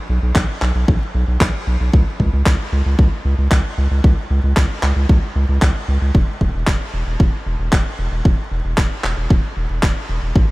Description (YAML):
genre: italo disco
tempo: 114 BPM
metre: 4/4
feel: straight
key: C# minor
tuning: A4 = 440 Hz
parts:
  - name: round analog bass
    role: bass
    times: 0.1-10.5 s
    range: E1 to C#2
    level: -18 LUFS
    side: equal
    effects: none
  - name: electronic handclaps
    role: drums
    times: 0.4-9.9 s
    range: none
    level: -24 LUFS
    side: equal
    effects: none
  - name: electronic kick drum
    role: drums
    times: 0.4-10.5 s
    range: none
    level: -15 LUFS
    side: equal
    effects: none
room: light reverb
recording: vinyl crackle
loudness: -15 LUFS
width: side -21 dB against mid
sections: 0.0-10.5 A section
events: none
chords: none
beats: 0.36 0.88 1.41 | 1.94 2.46 2.99 3.52 | 4.04 4.57 5.09 5.62 | 6.15 6.67 7.20 7.72 | 8.25 8.78 9.30 9.83 | 10.36